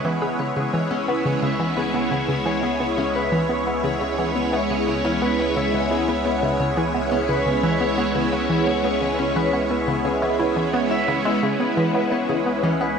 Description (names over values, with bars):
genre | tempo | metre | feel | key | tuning
ambient, sequencer-driven space music | 87 BPM | 4/4 | straight | C# minor | A4 = 440 Hz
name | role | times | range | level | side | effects
phased string machine | sustained chords | 0.0-13.0 s | G#3 to C#5 | -22 LUFS | right 1 dB | ensemble chorus, phaser
concert harp | arpeggios | 0.0-13.0 s | B3 to E5 | -26 LUFS | left 2 dB | auto-pan, ping-pong delay
analog pluck | riff | 0.0-13.0 s | C#3 to G#4 | -25 LUFS | equal | chorus, ping-pong delay
warm sub bass | bass | 0.0-13.0 s | C#2 | -36 LUFS | equal | none
pulsing gated texture | texture | 0.0-13.0 s | G#4 to C#5 | -36 LUFS | right 3 dB | none
room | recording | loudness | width
wet huge ambient reverb, RT60 8.1 s | none | -19 LUFS | side -6 dB against mid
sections
0.0-13.0 A section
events
fade-in on sub bass 0.0-13.0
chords
0.0 C#m7